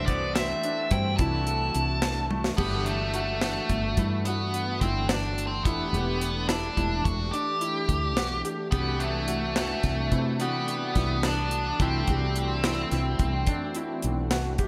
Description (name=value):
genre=progressive instrumental, band music in an uneven meter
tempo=215 BPM (eighths)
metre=11/8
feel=straight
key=C lydian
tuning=A4 = 440 Hz
part: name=nasal lead guitar with a parked wah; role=melody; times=0.0-14.3 s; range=A3 to A5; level=-32 LUFS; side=equal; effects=overdrive, digital delay
part: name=electric guitar at the edge of break-up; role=second line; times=0.0-2.3, 8.7-14.3 s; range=E3 to E4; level=-42 LUFS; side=equal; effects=slapback echo, digital delay
part: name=brassy analog pad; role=accompaniment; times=0.0-14.7 s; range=E3 to G4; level=-37 LUFS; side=equal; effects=chorus
part: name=woody fretless electric bass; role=bass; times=0.0-14.6 s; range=E1 to C3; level=-32 LUFS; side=equal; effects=none
part: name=bright grand piano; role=arpeggios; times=0.1-14.7 s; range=A3 to A4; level=-38 LUFS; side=equal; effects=digital delay
part: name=deep reggae drum kit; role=drums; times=0.1-14.7 s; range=crash cymbal, hi-hat, kick drum, snare drum, toms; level=-32 LUFS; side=equal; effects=none
room=moderate scoring stage reverb, RT60 2.2 s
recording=big arena sound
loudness=-27 LUFS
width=mono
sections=0.0-2.6 A section; 2.6-14.7 B section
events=drum fill 2.3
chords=0.0 C6; 2.6 Gmaj9; 5.7 Em7; 8.7 Cmaj7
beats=0.08 0.36 0.64 0.92 1.20 1.47 1.75 2.03 2.31 | 2.59 2.87 3.15 3.42 3.70 3.98 4.26 4.54 4.82 5.10 5.38 | 5.66 5.94 6.22 6.50 6.77 7.05 7.33 7.61 7.89 8.17 8.45 | 8.73 9.01 9.29 9.57 9.85 10.12 10.40 10.68 10.96 11.24 11.52 | 11.80 12.08 12.36 12.64 12.92 13.20 13.48 13.76 14.04 14.32 14.60